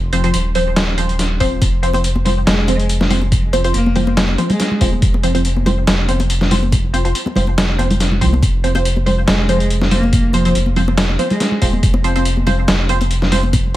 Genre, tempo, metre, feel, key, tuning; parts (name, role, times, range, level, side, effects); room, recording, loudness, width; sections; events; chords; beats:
deep dubstep; 141 BPM; 4/4; swing 53% on 16ths, half-time; F minor; A4 = 440 Hz
soft dub sub bass; bass; 0.0-13.8 s; Eb1 to C2; -17 LUFS; equal
filtered dub chord stab; stabs; 0.1-13.8 s; F3 to C5; -20 LUFS; right 1 dB; phaser, dub echo
trip hop sampler-style drum kit; drums; 0.1-13.8 s; hi-hat, snare drum; -19 LUFS; equal
electronic kick drum; drums; 1.4-13.6 s; -16 LUFS; equal
congas; percussion; 1.6-13.6 s; -22 LUFS; left 1 dB; dub echo
clear cello; melody; 2.5-4.8, 9.3-11.7 s; Ab3 to Bb3; -23 LUFS; equal; dub echo
light reverb; vinyl crackle; -13 LUFS; side -15 dB against mid
0.0-13.8 A section
0.0 F5
0.34 0.77 1.19 | 1.62 2.04 2.47 2.89 | 3.32 3.74 4.17 4.59 | 5.02 5.45 5.87 6.30 | 6.72 7.15 7.57 8.00 | 8.43 8.85 9.28 9.70 | 10.13 10.55 10.98 11.40 | 11.83 12.26 12.68 13.11 | 13.53